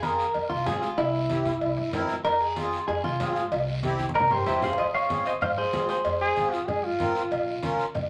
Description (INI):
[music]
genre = latin, cumbia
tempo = 189 BPM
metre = 4/4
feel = straight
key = F harmonic minor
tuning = A4 = 439 Hz
[part]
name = clean electric guitar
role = melody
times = 0.0-6.5 s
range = E4 to F5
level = -28 LUFS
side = equal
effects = spring reverb
[part]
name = accordion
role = accompaniment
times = 0.0-7.9 s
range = C4 to Bb4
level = -34 LUFS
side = equal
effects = light tremolo tuning
[part]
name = upright bass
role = bass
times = 0.0-8.1 s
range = Bb1 to Ab2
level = -37 LUFS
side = equal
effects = none
[part]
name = congas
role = percussion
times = 0.0-8.1 s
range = none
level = -39 LUFS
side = equal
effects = none
[part]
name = cowbell and timbales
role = percussion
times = 0.0-8.1 s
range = none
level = -35 LUFS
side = equal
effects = none
[part]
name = guiro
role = percussion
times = 0.0-8.1 s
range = none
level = -45 LUFS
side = equal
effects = none
[part]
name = brilliant trombone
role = second line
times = 6.2-7.8 s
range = F4 to Ab4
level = -29 LUFS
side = equal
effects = none
[sound]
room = wet club reverb, RT60 0.6 s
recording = none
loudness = -26 LUFS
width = mono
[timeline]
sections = 0.0-4.8 A section; 4.8-8.1 B section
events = clean electric guitar solo 0.0-4.8; drum fill 4.0-4.8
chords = 0.0 Fm; 1.0 C7; 2.2 Fm; 3.5 C; 4.8 Fm; 7.3 Bbm